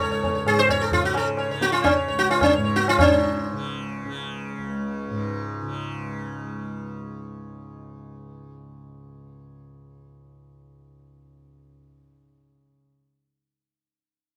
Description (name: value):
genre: indian classical, Hindustani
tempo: 130 BPM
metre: 7/4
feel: straight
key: unclear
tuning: A4 = 440 Hz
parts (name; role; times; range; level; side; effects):
- sitar; melody; 0.0-7.7 s; C#4 to C#5; -24 LUFS; equal; none
- tanpura; drone; 0.0-12.8 s; C#2 to C#3; -33 LUFS; equal; none
- tabla; percussion; 0.2-3.2 s; none; -27 LUFS; equal; none
room: moderate booth ambience, RT60 0.2 s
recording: none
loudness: -23 LUFS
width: mono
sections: 0.0-3.0 A section; 3.0-6.2 B section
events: none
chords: none